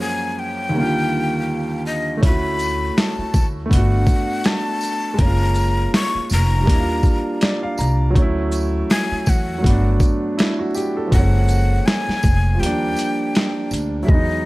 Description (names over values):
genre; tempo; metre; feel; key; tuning
lo-fi hip hop; 81 BPM; 4/4; swing 57% on 16ths; unclear; A4 = 440 Hz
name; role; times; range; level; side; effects
breathy jazz flute; melody; 0.0-14.5 s; D#5 to C#6; -24 LUFS; left 2 dB; none
clear upright piano; accompaniment; 0.0-14.5 s; D#2 to A#5; -22 LUFS; right 1 dB; cassette tape
upright bass; bass; 2.2-14.5 s; E#1 to E2; -19 LUFS; equal; none
boom bap sampler-style drum kit; drums; 2.2-14.3 s; hi-hat, kick drum, shaker, snare drum; -17 LUFS; equal; none
tambourine; percussion; 2.6-13.9 s; none; -36 LUFS; right 3 dB; none
room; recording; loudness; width
studio reverb; vinyl crackle; -16 LUFS; side -20 dB against mid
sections
0.0-14.1 A section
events
upright piano fill 7.0-8.2; break 12.6-14.1; hi-hats muted 14.1-14.5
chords
0.0 F#maj9; 0.7 D#maj9; 2.2 Dmaj9; 3.7 Gmaj9; 5.2 F#maj9; 6.7 D#maj9; 8.2 Dmaj9; 9.6 Gmaj9; 11.1 F#maj9; 12.6 D#maj9